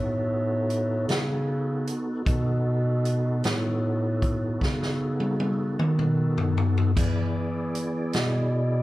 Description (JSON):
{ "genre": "slow blues", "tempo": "51 BPM (dotted quarters)", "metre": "12/8", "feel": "straight", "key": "B mixolydian", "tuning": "A4 = 440 Hz", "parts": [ { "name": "tonewheel organ", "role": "sustained chords", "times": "0.0-8.8 s", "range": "B3 to D5", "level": "-30 LUFS", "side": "equal", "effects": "chorus vibrato, slow rotary speaker" }, { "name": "dark bass clarinet", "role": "bass", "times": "0.0-8.8 s", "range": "A2 to E3", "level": "-26 LUFS", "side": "equal", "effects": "none" }, { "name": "swinging big-band drum kit", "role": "drums", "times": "0.7-8.3 s", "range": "hi-hat, kick drum, snare drum, splash cymbal, toms", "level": "-26 LUFS", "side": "left 1 dB", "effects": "none" } ], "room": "light reverb", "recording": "band playing live in one room", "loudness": "-23 LUFS", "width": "side -16 dB against mid", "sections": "0.0-8.8 A section", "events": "drum fill 4.6-7.0", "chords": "0.0 B7; 7.0 E7" }